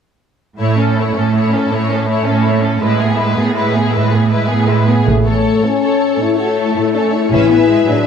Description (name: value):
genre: cinematic, heroic adventure film score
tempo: 107 BPM (dotted quarters)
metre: 12/8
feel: straight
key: A major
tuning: A4 = 440 Hz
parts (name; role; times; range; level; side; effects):
- warm symphonic violin section; melody; 0.6-8.1 s; G#4 to E5; -22 LUFS; left 4 dB; none
- warm symphonic violin section; second line; 0.6-8.0 s; C#4 to B4; -20 LUFS; left 2 dB; none
- warm symphonic viola section; accompaniment; 0.6-8.1 s; F#3 to C#4; -20 LUFS; equal; none
- rich symphonic cello section; bass; 0.6-8.1 s; A2; -16 LUFS; right 5 dB; none
- dark French horn section; sustained chords; 4.9-8.1 s; A3 to F#4; -14 LUFS; left 6 dB; none
- clear symphonic double bass section; bass; 5.1-7.7 s; A1; -18 LUFS; right 3 dB; none
room: moderate scoring stage reverb, RT60 1.7 s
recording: none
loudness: -12 LUFS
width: side -7 dB against mid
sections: 0.6-5.1 A section; 5.1-8.1 B section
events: none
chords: 0.6 A; 2.8 E/A; 5.1 A; 7.3 E/A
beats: | 0.59 1.15 1.70 2.26 | 2.81 3.36 3.92 4.49 | 5.07 5.64 6.20 6.76 | 7.32 7.88